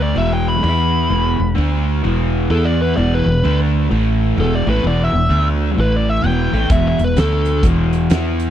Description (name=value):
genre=blues rock power trio and southern rock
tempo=128 BPM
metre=4/4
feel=swing 62% on 8ths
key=unclear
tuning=A4 = 440 Hz
part: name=biting lead guitar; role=melody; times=0.0-7.6 s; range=A4 to B5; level=-21 LUFS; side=equal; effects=overdrive, tape echo
part: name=crunchy overdriven guitar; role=riff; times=0.0-8.5 s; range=E2 to E4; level=-18 LUFS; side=equal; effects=spring reverb
part: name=woody fretless electric bass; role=bass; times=0.0-8.5 s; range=E1 to E2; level=-17 LUFS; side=equal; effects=none
part: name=big rock drum kit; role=drums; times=6.7-8.5 s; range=hi-hat, kick drum, snare drum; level=-18 LUFS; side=equal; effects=none
room=little or no reverb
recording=dry, close 1970s-style studio recording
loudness=-14 LUFS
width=side -10 dB against mid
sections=0.0-8.5 A section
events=none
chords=0.2 E5; 1.6 D5; 2.0 E5; 3.4 D5; 3.9 A5; 4.4 E5; 5.3 D5; 5.8 A5; 6.2 Em; 7.2 D5; 7.6 E5